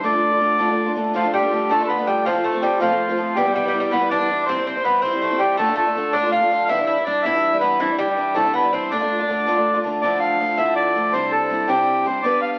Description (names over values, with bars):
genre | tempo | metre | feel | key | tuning
celtic folk, Celtic jig | 108 BPM (dotted quarters) | 6/8 | straight | D dorian | A4 = 440 Hz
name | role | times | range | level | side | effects
accordion | melody | 0.0-12.6 s | E4 to F5 | -22 LUFS | equal | none
picked twelve-string acoustic guitar | accompaniment | 0.0-12.6 s | E2 to B4 | -25 LUFS | equal | none
Irish bouzouki | second line | 1.2-9.8 s | E3 to F4 | -26 LUFS | equal | none
room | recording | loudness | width
wet studio reverb, RT60 0.9 s | very old 78 rpm record, vinyl crackle | -20 LUFS | mono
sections
0.0-1.1 A section; 1.1-10.0 A section; 10.0-12.6 B section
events
none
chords
0.0 Dm; 2.3 F; 3.4 Em; 4.5 C; 5.6 Dm; 6.7 Em7; 7.8 Cadd9; 8.9 Dm; 10.0 Dmadd9; 11.1 Cadd9